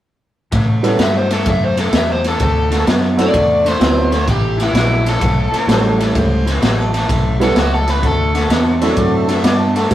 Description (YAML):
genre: electric blues shuffle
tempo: 128 BPM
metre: 4/4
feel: swing 67% on 8ths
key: unclear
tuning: A4 = 443 Hz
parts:
  - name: electric guitar through a small old amp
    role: riff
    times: 0.5-9.9 s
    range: A2 to B3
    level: -20 LUFS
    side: left 1 dB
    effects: none
  - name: vintage muted fingered electric bass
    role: bass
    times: 0.5-9.9 s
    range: A1 to A2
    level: -18 LUFS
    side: equal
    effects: none
  - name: raw garage drum kit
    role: drums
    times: 0.5-9.9 s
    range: kick drum, ride cymbal, snare drum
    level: -18 LUFS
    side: equal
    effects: none
  - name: warm upright piano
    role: accompaniment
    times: 0.8-9.9 s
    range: F#3 to B4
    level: -17 LUFS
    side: right 2 dB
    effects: none
  - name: overdriven semi-hollow guitar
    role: melody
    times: 1.0-9.0 s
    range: E4 to E5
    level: -19 LUFS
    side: equal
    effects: none
  - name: mellow harmonica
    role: second line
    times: 5.7-9.9 s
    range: A4 to E5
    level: -24 LUFS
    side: right 1 dB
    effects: none
room: moderate small room reverb, RT60 0.5 s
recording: rough rehearsal-room recording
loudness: -12 LUFS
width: side -13 dB against mid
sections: 0.5-9.9 A section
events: none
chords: 0.5 A7(no3); 2.4 D9; 4.3 A9; 8.0 D9